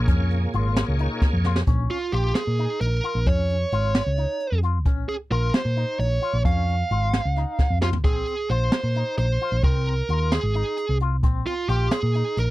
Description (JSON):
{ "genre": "progressive instrumental, band music in an uneven meter", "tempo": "264 BPM (eighths)", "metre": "7/8", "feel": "straight", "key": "Bb minor", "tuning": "A4 = 442 Hz", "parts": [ { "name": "bright tonewheel organ", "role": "accompaniment", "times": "0.0-1.6 s", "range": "Bb2 to Db5", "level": "-29 LUFS", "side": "right 1 dB", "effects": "chorus vibrato, slow rotary speaker" }, { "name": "hollow-body short-scale picked electric bass", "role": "bass", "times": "0.0-12.5 s", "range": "Ab1 to Bb2", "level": "-23 LUFS", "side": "equal", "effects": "none" }, { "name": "electric guitar with an envelope filter", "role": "arpeggios", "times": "0.1-12.4 s", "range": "C4 to F4", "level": "-32 LUFS", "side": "left 10 dB", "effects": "tremolo" }, { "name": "jazz brush drum kit", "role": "drums", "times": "0.1-12.5 s", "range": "hi-hat, kick drum, snare drum, toms", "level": "-22 LUFS", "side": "equal", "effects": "none" }, { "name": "bluesy overdriven lead guitar", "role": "melody", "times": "1.9-12.5 s", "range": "F4 to F5", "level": "-26 LUFS", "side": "right 3 dB", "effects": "distortion" } ], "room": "little or no reverb", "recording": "dry, close 1970s-style studio recording", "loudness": "-20 LUFS", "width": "side -17 dB against mid", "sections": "0.0-1.7 A section; 1.7-12.5 B section", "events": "drum fill 1.2-1.7, 7.6-8.0", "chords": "0.0 Bbm7; 1.7 Bbm; 8.0 Fm", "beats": "| 0.08 0.31 0.54 0.76 0.99 1.22 1.44 | 1.67 1.90 2.12 2.35 2.58 2.81 3.03 | 3.26 3.49 3.72 3.94 4.17 4.40 4.62 | 4.85 5.08 5.31 5.54 5.76 5.99 6.22 | 6.45 6.67 6.90 7.13 7.36 7.58 7.81 | 8.04 8.27 8.49 8.72 8.95 9.18 9.41 | 9.63 9.86 10.09 10.32 10.55 10.78 11.00 | 11.23 11.46 11.69 11.92 12.14 12.37" }